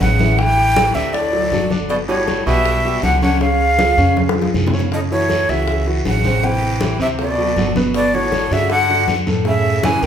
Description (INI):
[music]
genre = Afro-Cuban jazz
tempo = 159 BPM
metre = 4/4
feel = straight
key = unclear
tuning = A4 = 440 Hz
[part]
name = breathy jazz flute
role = melody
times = 0.0-10.1 s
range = C#5 to G#5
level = -18 LUFS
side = equal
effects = none
[part]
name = clear baritone saxophone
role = second line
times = 0.0-10.1 s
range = A2 to E3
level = -25 LUFS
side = right 2 dB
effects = none
[part]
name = warm grand piano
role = accompaniment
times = 0.0-10.1 s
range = A2 to E5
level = -22 LUFS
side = right 1 dB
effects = none
[part]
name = upright bass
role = bass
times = 0.0-10.1 s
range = G1 to G2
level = -20 LUFS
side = equal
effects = none
[part]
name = bongos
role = percussion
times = 0.0-10.0 s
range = none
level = -28 LUFS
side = left 6 dB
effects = none
[part]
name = congas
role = percussion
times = 0.0-10.1 s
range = none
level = -24 LUFS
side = left 3 dB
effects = none
[part]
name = guiro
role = percussion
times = 0.0-10.1 s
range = none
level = -31 LUFS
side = left 1 dB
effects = none
[sound]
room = wet large studio reverb, RT60 1.1 s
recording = band playing live in one room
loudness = -14 LUFS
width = side -8 dB against mid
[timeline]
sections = 0.0-10.1 A section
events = drum fill 4.2-4.9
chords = 0.4 A5; 1.1 D; 1.9 Gmaj9; 3.4 C#; 4.9 F#m7; 6.4 Am7; 7.2 D6; 7.9 Gmaj9#11; 9.5 F#m7